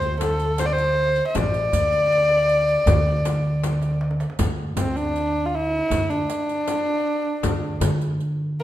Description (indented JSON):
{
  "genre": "Persian modal ensemble",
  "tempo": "79 BPM",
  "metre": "4/4",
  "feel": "straight",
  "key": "unclear",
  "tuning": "A4 = 444 Hz",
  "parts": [
    { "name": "warm kamancheh", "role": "melody", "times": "0.0-8.6 s", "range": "C4 to Eb5+40c", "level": "-21 LUFS", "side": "left 1 dB", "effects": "none" },
    { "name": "upright bass", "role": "bass", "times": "0.0-8.6 s", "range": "A1 to D3", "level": "-24 LUFS", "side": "equal", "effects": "none" },
    { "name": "riq", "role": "percussion", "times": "0.0-8.3 s", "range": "none", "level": "-35 LUFS", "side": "right 5 dB", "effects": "none" },
    { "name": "frame drum", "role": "percussion", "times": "0.2-8.0 s", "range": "none", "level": "-30 LUFS", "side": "left 5 dB", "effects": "none" },
    { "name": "tombak", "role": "percussion", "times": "0.2-8.6 s", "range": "none", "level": "-29 LUFS", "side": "right 1 dB", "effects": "none" }
  ],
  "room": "wet recital hall reverb, RT60 1.5 s",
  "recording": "minimal, uncompressed stereo recording",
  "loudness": "-19 LUFS",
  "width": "side -13 dB against mid",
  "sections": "0.0-4.4 A section; 4.4-8.6 B section",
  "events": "drum fill 3.6-4.4",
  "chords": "none"
}